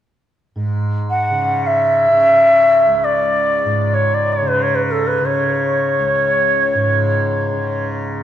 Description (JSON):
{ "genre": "indian classical", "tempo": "free time", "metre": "none", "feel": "none", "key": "C# raga bhairavi", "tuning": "A4 = 440 Hz", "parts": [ { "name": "tanpura", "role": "drone", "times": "0.6-8.2 s", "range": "C#2 to C#3", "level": "-21 LUFS", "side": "right 1 dB", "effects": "none" }, { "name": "bright reedy bansuri", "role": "melody", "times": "1.1-7.9 s", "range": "A4 to F#5+22c", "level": "-14 LUFS", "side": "equal", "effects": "none" } ], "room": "wet recital hall reverb, RT60 1.6 s", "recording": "dark, warm production", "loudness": "-13 LUFS", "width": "side -10 dB against mid", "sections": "0.5-8.2 A section", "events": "none", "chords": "none", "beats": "free time" }